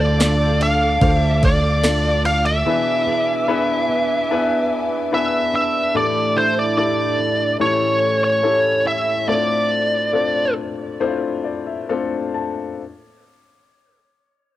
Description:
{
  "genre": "pop ballad",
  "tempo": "66-73 BPM",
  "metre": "4/4",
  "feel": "straight",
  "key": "D minor",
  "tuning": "A4 = 440 Hz",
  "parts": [
    { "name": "bluesy overdriven lead guitar", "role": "melody", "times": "0.0-10.5 s", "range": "C5 to F5", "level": "-19 LUFS", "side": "equal", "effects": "distortion, cassette tape" },
    { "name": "warm baby grand piano", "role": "accompaniment", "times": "0.0-12.8 s", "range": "A2 to A5", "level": "-23 LUFS", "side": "left 5 dB", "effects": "cassette tape" },
    { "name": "warm studio string section", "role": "sustained chords", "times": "0.0-5.9 s", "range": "A4 to D6", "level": "-30 LUFS", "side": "equal", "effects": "cassette tape" },
    { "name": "fingerpicked plugged-in steel-string acoustic guitar", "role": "arpeggios", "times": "0.0-9.9 s", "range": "A2 to A4", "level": "-27 LUFS", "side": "right 7 dB", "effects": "cassette tape" },
    { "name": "sustaining fretless electric bass", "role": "bass", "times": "0.0-2.6 s", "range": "D2", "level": "-18 LUFS", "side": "equal", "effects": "none" },
    { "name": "smooth R&B drum kit", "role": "drums", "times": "0.2-2.6 s", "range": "kick drum, ride cymbal, snare drum", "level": "-21 LUFS", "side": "equal", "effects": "none" }
  ],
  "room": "light reverb",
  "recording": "home recording on cassette",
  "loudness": "-16 LUFS",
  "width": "side -14 dB against mid",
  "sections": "0.0-12.8 A section",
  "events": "slowing down 5.9-12.8; grand piano fill 11.0-12.8",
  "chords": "0.0 Dm; 2.7 E7; 5.9 A7sus4; 7.6 A7; 9.3 Dm7",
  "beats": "0.19 1.02 1.84 | 2.66 3.48 4.30 5.13 | 5.95 6.77 7.60 8.43 | 9.28 10.14 11.01 11.89"
}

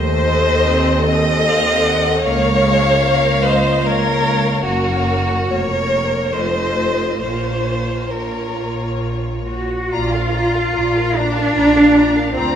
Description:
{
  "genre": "classical, slow romantic movement for string orchestra",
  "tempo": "66-78 BPM",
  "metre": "3/4",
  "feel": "rubato",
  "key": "Bb minor",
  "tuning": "A4 = 439 Hz",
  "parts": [
    { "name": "rich chamber violin section", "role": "melody", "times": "0.0-12.5 s", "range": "Db5 to Bb5", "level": "-25 LUFS", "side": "left 5 dB", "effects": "none" },
    { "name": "rich chamber violin section", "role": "second line", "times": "0.0-12.5 s", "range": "Gb4 to F5", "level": "-19 LUFS", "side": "left 1 dB", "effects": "none" },
    { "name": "rich chamber viola section", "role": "accompaniment", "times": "0.0-12.6 s", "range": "Ab3 to Eb5", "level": "-22 LUFS", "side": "equal", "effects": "none" },
    { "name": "clear chamber double bass section", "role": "bass", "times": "0.0-12.6 s", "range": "F1 to Eb2", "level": "-22 LUFS", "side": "right 2 dB", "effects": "none" },
    { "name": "rich symphonic cello section", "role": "bass", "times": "0.0-12.6 s", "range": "Db2 to Gb4", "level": "-20 LUFS", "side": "right 1 dB", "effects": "none" }
  ],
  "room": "wet recital hall reverb, RT60 1.5 s",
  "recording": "recorded in a church or concert hall",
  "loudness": "-14 LUFS",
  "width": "side -8 dB against mid",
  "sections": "0.0-9.9 A section; 9.9-12.6 B section",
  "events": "none",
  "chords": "0.0 F7/Eb (rootless); 2.2 Bbm/Db; 4.6 Gb; 5.5 Bbm/F; 6.3 F7; 7.2 Bbm; 9.9 Bb",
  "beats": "0.68 1.47 | 2.24 3.03 3.83 | 4.64 5.51 6.35 | 7.24 8.13 9.03 | 9.92 10.75 11.55 | 12.34"
}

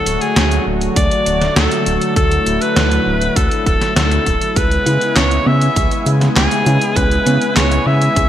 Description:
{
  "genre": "synthwave",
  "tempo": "100 BPM",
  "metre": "4/4",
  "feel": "straight",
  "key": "unclear",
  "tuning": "A4 = 440 Hz",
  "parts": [
    { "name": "edgy alto saxophone", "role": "melody", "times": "0.0-8.3 s", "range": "G#4 to E5", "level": "-18 LUFS", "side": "equal", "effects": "vintage 12-bit sampler grit, digital delay" },
    { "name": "warm analog pad", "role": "sustained chords", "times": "0.0-8.3 s", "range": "C#3 to G#5", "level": "-20 LUFS", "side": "left 1 dB", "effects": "chorus, sidechain pumping" },
    { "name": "round analog bass", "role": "bass", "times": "0.1-8.3 s", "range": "D1 to C#3", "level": "-17 LUFS", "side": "equal", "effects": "tube saturation" },
    { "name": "detuned 8-bit digital drum machine", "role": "drums", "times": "0.1-8.3 s", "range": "handclaps, hi-hat, snare drum", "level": "-19 LUFS", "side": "equal", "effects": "studio reverb, gated reverb" },
    { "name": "electronic kick drum", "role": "drums", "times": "1.0-8.3 s", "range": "none", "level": "-18 LUFS", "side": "equal", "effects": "studio reverb" },
    { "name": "warbly dusty pluck", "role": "arpeggios", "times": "4.6-8.3 s", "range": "B3 to G#4", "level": "-23 LUFS", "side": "right 2 dB", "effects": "chorus, digital delay" }
  ],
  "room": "moderate plate reverb, RT60 1.5 s",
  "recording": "bright 1980s-style digital production",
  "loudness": "-12 LUFS",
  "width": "side -11 dB against mid",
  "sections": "0.0-8.3 A section",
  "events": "none",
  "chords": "0.0 D; 4.6 C#m7",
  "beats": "0.36 0.96 1.56 | 2.17 2.77 3.37 3.96 | 4.57 5.17 5.76 6.37 | 6.96 7.57 8.16"
}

